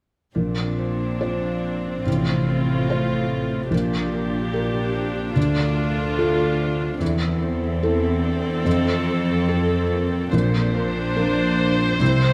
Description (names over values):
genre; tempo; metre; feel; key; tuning
cinematic; 72 BPM; 4/4; rubato; unclear; A4 = 440 Hz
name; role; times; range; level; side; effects
concert harp; arpeggios; 0.3-12.3 s; Bb2 to C5; -28 LUFS; equal; none
warm symphonic cello section; bass; 0.3-12.3 s; D2 to C3; -29 LUFS; equal; none
felt-muted upright piano; accompaniment; 0.4-12.3 s; A1 to C5; -26 LUFS; equal; none
warm chamber viola section; accompaniment; 0.4-12.3 s; C4 to C5; -29 LUFS; equal; none
room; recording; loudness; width
light reverb; none; -22 LUFS; mono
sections
0.4-12.3 A section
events
none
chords
0.4 Bbadd9; 2.1 F/A; 3.7 Gm/Bb; 5.4 Dm; 7.0 Am/E; 8.7 F; 10.3 Bbadd9